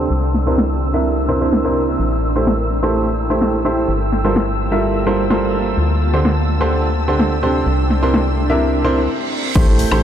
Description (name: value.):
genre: piano house.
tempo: 127 BPM.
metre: 4/4.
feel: straight.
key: unclear.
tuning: A4 = 443 Hz.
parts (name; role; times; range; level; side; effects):
dark studio violin section; sustained chords; 0.0-10.0 s; E6 to G6; -29 LUFS; right 1 dB; sidechain pumping.
clear baby grand piano; riff; 0.0-10.0 s; C3 to E5; -18 LUFS; right 1 dB; sidechain pumping, low-pass filter, ping-pong delay.
organ-like FM bass; bass; 0.0-10.0 s; G1 to D2; -19 LUFS; left 1 dB; sidechain pumping.
granular cloud pad; texture; 0.0-10.0 s; Bb3 to C6; -24 LUFS; right 1 dB; built-in reverb, sidechain pumping.
house drum kit; drums; 0.3-10.0 s; crash cymbal, hi-hat, snare drum, woodblock; -24 LUFS; left 1 dB; low-pass filter on hats, low-pass filter on snare, low-pass filter on cymbals, low-pass filter on perc.
reverse cymbal and impact; sound effects; 8.9-10.0 s; none; -25 LUFS; right 1 dB; none.
electronic kick drum; drums; 9.6-9.7 s; none; -14 LUFS; equal; overdrive.
hi-hat; drums; 9.6-9.9 s; none; -36 LUFS; right 5 dB; none.
room: moderate huge ambient reverb, RT60 6.7 s.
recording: dreamy mix soaked in reverb, low-pass filter.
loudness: -14 LUFS.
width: side -9 dB against mid.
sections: 0.0-9.6 A section.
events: filter sweep on grand piano 0.0-9.6; filter sweep on violin section 0.0-9.6; filter sweep 0.0-9.6; reverse cymbal 8.9-9.6; stop 9.1-9.6; impact 9.6-10.0.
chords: 0.1 C9; 2.0 Am7; 3.9 Gm11; 5.8 D7sus4; 7.7 C9.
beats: | 0.11 0.58 1.05 1.52 | 2.00 2.47 2.94 3.41 | 3.88 4.36 4.83 5.30 | 5.78 6.25 6.72 7.19 | 7.67 8.14 8.61 9.08 | 9.55 10.03.